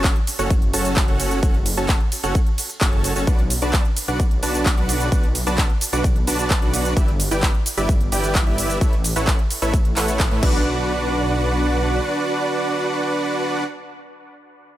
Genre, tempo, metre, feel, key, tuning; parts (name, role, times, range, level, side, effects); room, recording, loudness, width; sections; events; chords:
EDM, festival progressive house; 130 BPM; 4/4; straight; B minor; A4 = 438 Hz
dense compressed supersaw; riff; 0.0-13.6 s; C#4 to A5; -23 LUFS; right 1 dB; sidechain pumping, dub echo
wide detuned saw bass; bass; 0.0-12.0 s; F#1 to A2; -24 LUFS; equal; chorus, sidechain pumping
big-room dance drum kit; drums; 0.0-10.5 s; crash cymbal, handclaps, hi-hat, ride cymbal, shaker; -25 LUFS; right 1 dB
electronic kick drum; drums; 0.0-10.5 s; -18 LUFS; equal
little or no reverb; -17 LUFS; side -14 dB against mid
0.0-10.7 A section; 10.7-14.4 B section
drop 0.0-10.7; band accent 10.2
0.0 F#m; 3.3 Bm; 7.0 G6; 8.8 Aadd9; 10.4 Bm